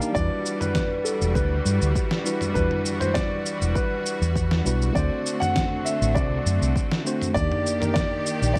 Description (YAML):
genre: sunset chillout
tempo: 100 BPM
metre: 4/4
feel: straight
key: unclear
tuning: A4 = 440 Hz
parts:
  - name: tine electric piano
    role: accompaniment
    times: 0.0-8.6 s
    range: G3 to F5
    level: -32 LUFS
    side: equal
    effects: vintage 12-bit sampler grit
  - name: clear studio string section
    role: sustained chords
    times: 0.0-8.6 s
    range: D3 to D5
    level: -34 LUFS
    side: equal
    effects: none
  - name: dusty soul sampler-style drum kit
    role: drums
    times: 0.0-8.6 s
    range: shaker, snare drum, toms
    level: -31 LUFS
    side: equal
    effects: overdrive
  - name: dark baby grand piano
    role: melody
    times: 0.1-8.6 s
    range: A4 to F#5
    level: -30 LUFS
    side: equal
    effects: digital delay
  - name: fingered electric bass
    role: bass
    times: 0.2-8.5 s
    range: E1 to G2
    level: -25 LUFS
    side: equal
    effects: none
  - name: electronic kick drum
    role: drums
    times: 0.2-8.6 s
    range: none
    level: -30 LUFS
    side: equal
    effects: overdrive
room: light reverb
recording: none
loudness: -24 LUFS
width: mono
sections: 0.0-8.6 A section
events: none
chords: 0.2 Em9; 5.0 D7; 7.4 Ebmaj7